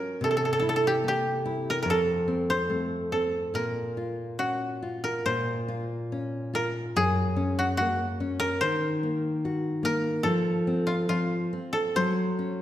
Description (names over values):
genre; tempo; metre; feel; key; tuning
fado-style ballad; 72 BPM; 2/4; rubato; Bb minor; A4 = 440 Hz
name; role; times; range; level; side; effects
koto; melody; 0.0-12.6 s; F4 to C5; -27 LUFS; right 1 dB; none
nylon-string guitar; accompaniment; 0.0-12.6 s; F2 to Gb4; -29 LUFS; left 2 dB; none
room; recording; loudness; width
wet recital hall reverb, RT60 1.6 s; none; -25 LUFS; side -12 dB against mid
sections
0.0-5.2 A section; 5.2-12.6 A section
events
none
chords
0.2 C7; 1.9 F; 3.5 Bbm; 7.0 Gb; 8.6 Ebm; 10.2 F5; 11.9 Gb5